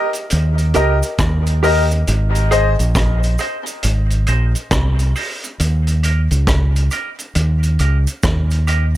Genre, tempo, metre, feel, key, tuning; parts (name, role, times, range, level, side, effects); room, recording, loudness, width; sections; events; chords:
dub reggae; 68 BPM; 4/4; swing 63% on 16ths; Ab major; A4 = 441 Hz
mellow electric guitar; accompaniment; 0.0-9.0 s; G4 to Eb5; -24 LUFS; right 2 dB; high-pass filter, dub echo
bright upright piano; stabs; 0.0-2.7 s; G4 to Eb5; -22 LUFS; left 3 dB; high-pass filter, dub echo
vintage drum kit; drums; 0.1-8.9 s; hi-hat, kick drum, rim click; -22 LUFS; equal
cabasa; percussion; 0.1-8.9 s; -32 LUFS; right 7 dB; high-pass filter on perc
deep dub fingered electric bass; bass; 0.3-9.0 s; Ab1 to Eb2; -15 LUFS; equal
light reverb, studio ambience; -14 LUFS; side -14 dB against mid
0.0-9.0 A section
filter sweep 0.0-9.0
0.0 Eb; 2.1 Ab; 5.6 Eb